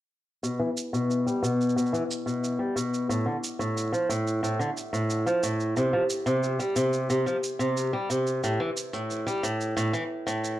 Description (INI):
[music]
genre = folktronica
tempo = 90 BPM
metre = 4/4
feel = straight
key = unclear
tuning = A4 = 440 Hz
[part]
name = picked swing-style acoustic guitar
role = arpeggios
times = 0.4-10.6 s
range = A2 to G3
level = -25 LUFS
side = equal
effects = low-pass filter, digital delay
[part]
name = shaker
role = drums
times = 0.4-10.6 s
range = none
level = -37 LUFS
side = right 4 dB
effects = none
[sound]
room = wet studio reverb, RT60 0.6 s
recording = dark, warm production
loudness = -25 LUFS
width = side -14 dB against mid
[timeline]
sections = 0.4-10.6 A section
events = filter sweep on steel-string acoustic guitar 0.4-10.6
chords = none